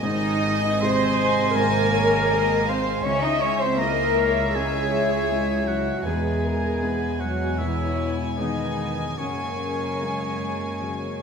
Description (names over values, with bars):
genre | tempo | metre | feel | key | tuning
cinematic, emotional film score for orchestra | 79 BPM | 4/4 | uneven beats, rubato | Ab mixolydian | A4 = 440 Hz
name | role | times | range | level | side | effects
warm symphonic violin section | melody | 0.0-11.2 s | Fb5 to Ab5 | -31 LUFS | left 4 dB | none
clear oboe | second line | 0.0-11.2 s | Db5 to Eb6 | -29 LUFS | right 2 dB | none
warm symphonic violin section | second line | 0.0-11.2 s | Bb4 to F5 | -31 LUFS | left 1 dB | none
dark symphonic viola section | accompaniment | 0.0-11.2 s | Db4 to Eb5 | -26 LUFS | equal | none
felt-muted upright piano | accompaniment | 0.0-11.2 s | E1 to Ab4 | -31 LUFS | right 1 dB | none
mellow French horn section | sustained chords | 0.0-11.2 s | C3 to Fb4 | -32 LUFS | left 4 dB | none
concert harp | arpeggios | 0.0-11.2 s | E2 to Ab4 | -34 LUFS | left 8 dB | none
dark symphonic double bass section | bass | 0.0-11.2 s | Ab1 to Gb2 | -31 LUFS | right 3 dB | none
rich studio cello section | bass | 0.0-11.2 s | Db3 to Eb4 | -31 LUFS | equal | none
room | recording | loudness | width
moderate scoring stage reverb, RT60 1.6 s | minimal, uncompressed stereo recording | -21 LUFS | side -6 dB against mid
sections
0.0-11.2 A section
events
none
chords
0.0 Abadd9; 3.0 Dbm; 6.1 E; 9.2 Gbadd9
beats
| 0.02 0.81 1.56 2.30 | 3.05 3.80 4.56 5.31 | 6.06 6.82 7.59 8.38 | 9.19 10.00 10.81